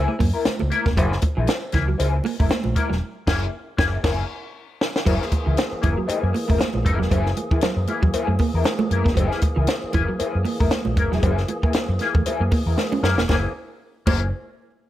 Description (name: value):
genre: funk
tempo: 117 BPM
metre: 4/4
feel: swing 56% on 16ths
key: F# mixolydian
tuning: A4 = 440 Hz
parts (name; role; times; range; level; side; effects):
- electric guitar at the edge of break-up; accompaniment; 0.0-14.2 s; A#3 to A#4; -27 LUFS; left 5 dB; wah, ensemble chorus
- fingered electric bass; bass; 0.0-14.3 s; E1 to F#2; -23 LUFS; equal; none
- clean electric guitar; riff; 0.1-14.2 s; E3 to C#4; -28 LUFS; right 4 dB; ensemble chorus
- compact cocktail drum kit; drums; 0.2-14.2 s; crash cymbal, hi-hat, kick drum, snare drum; -22 LUFS; equal; none
- congas; percussion; 0.2-14.3 s; none; -31 LUFS; right 6 dB; none
- cowbell; percussion; 0.5-14.3 s; none; -33 LUFS; left 2 dB; none
- percussive tonewheel organ; sustained chords; 5.1-13.5 s; E3 to G#4; -31 LUFS; equal; slow rotary speaker, overdrive
room: light reverb, small room reverb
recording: none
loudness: -19 LUFS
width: side -13 dB against mid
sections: 0.0-5.1 A section; 5.1-13.3 B section; 13.3-14.9 C section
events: band accent 3.0-5.1; drum fill 4.0-5.1, 12.8-13.3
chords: 0.0 F#9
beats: 0.46 | 0.97 1.48 2.00 2.51 | 3.02 3.53 4.04 4.55 | 5.07 5.58 6.09 6.60 | 7.12 7.63 8.14 8.66 | 9.17 9.68 10.20 10.71 | 11.23 11.74 12.26 12.77 | 13.29 13.81